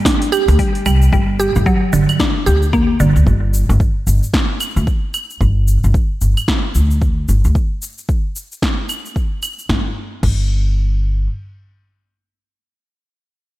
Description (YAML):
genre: organic downtempo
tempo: 112 BPM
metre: 4/4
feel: swing 60% on 16ths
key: G harmonic minor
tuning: A4 = 440 Hz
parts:
  - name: mallet-like synth pluck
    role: arpeggios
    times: 0.0-3.3 s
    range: D3 to G4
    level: -16 LUFS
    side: right 1 dB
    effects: chorus, analog delay
  - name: deep house drum kit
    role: drums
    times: 0.1-10.4 s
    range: claves, crash cymbal, hi-hat, shaker, snare drum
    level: -22 LUFS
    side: equal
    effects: overdrive
  - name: electronic kick drum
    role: drums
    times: 0.1-10.4 s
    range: none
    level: -18 LUFS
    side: equal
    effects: none
  - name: upright bass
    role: bass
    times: 0.5-11.3 s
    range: G1 to D2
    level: -15 LUFS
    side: equal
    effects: none
room: light reverb, digital ambience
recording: none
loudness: -14 LUFS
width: side -16 dB against mid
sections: 0.0-1.1 A section; 1.1-9.7 B section; 9.7-13.6 C section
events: filter sweep on upright bass 1.1-7.6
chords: 0.0 C5; 1.1 G5; 9.7 N.C.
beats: 0.05 0.59 | 1.12 1.66 2.19 2.73 | 3.27 3.80 4.34 4.87 | 5.41 5.95 6.48 7.02 | 7.55 8.09 8.62 9.16 | 9.70 10.23 10.77